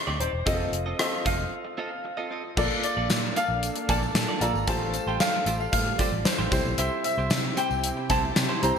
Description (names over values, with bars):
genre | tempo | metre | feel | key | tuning
1980s-style pop | 114 BPM | 4/4 | straight | unclear | A4 = 440 Hz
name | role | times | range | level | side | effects
warm baby grand piano | melody | 0.0-8.8 s | C5 to Bb5 | -29 LUFS | equal | wide subtle chorus
warm concert grand piano | accompaniment | 0.0-8.8 s | G3 to Eb5 | -33 LUFS | left 2 dB | none
direct-recorded clean electric guitar | riff | 0.1-8.8 s | A3 to Eb5 | -34 LUFS | right 4 dB | lush chorus, ping-pong delay
vintage muted fingered electric bass | bass | 0.1-8.8 s | Eb1 to C3 | -30 LUFS | equal | none
gated 80s drum kit | drums | 0.2-8.7 s | crash cymbal, hi-hat, kick drum, rim click, snare drum | -27 LUFS | equal | none
lush unison pad | sustained chords | 3.0-8.8 s | C3 to A4 | -34 LUFS | right 1 dB | chorus
tambourine | percussion | 2.6-8.8 s | none | -42 LUFS | left 7 dB | none
room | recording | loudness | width
moderate plate reverb, RT60 2.3 s | bright 1980s-style digital production | -23 LUFS | side -7 dB against mid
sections
0.0-2.6 A section; 2.6-8.8 B section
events
break 1.5-2.6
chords
0.5 F7; 2.6 Bbmaj7; 4.7 Fadd9/A; 6.5 C